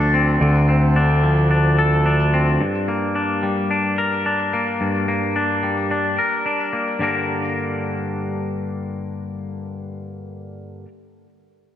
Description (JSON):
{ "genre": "rock", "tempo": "109 BPM", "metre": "4/4", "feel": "straight", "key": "G minor", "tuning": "A4 = 440 Hz", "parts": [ { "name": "twangy electric guitar", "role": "arpeggios", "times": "0.0-10.9 s", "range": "G2 to Bb4", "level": "-20 LUFS", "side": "left 2 dB", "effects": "analog delay" }, { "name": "fuzz picked electric bass", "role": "bass", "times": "0.0-2.6 s", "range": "D2", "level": "-16 LUFS", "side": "equal", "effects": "overdrive" } ], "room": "moderate lush hall reverb, RT60 2.6 s", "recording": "big arena sound", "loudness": "-17 LUFS", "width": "side -10 dB against mid", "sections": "0.0-7.0 A section; 7.0-11.4 B section", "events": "none", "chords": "0.0 Dm7; 2.6 Gm" }